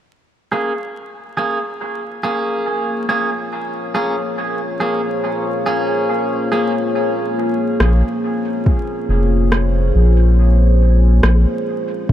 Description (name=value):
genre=ambient dub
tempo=70 BPM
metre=4/4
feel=swing 59% on 16ths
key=Bb minor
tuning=A4 = 438 Hz
part: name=deep dark ambient pad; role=sustained chords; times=2.7-12.1 s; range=Bb3 to Db5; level=-20 LUFS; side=left 1 dB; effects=chorus, built-in reverb
part: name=clean electric guitar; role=stabs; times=0.5-6.7 s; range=Bb3 to Ab4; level=-21 LUFS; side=right 1 dB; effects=spring reverb, low-pass filter, dub echo
part: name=round analog bass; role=bass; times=7.8-12.1 s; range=F1 to Bb1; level=-12 LUFS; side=equal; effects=none
part: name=electronic rim click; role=drums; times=7.8-11.4 s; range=none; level=-18 LUFS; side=equal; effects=overdrive
part: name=electronic kick drum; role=drums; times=8.7-12.1 s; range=none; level=-13 LUFS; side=equal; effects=overdrive
room=light reverb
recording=vinyl crackle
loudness=-15 LUFS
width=side -11 dB against mid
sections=0.1-6.9 A section; 6.9-12.1 B section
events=fade-in on ambient pad 0.1-6.9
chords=0.1 Bbm7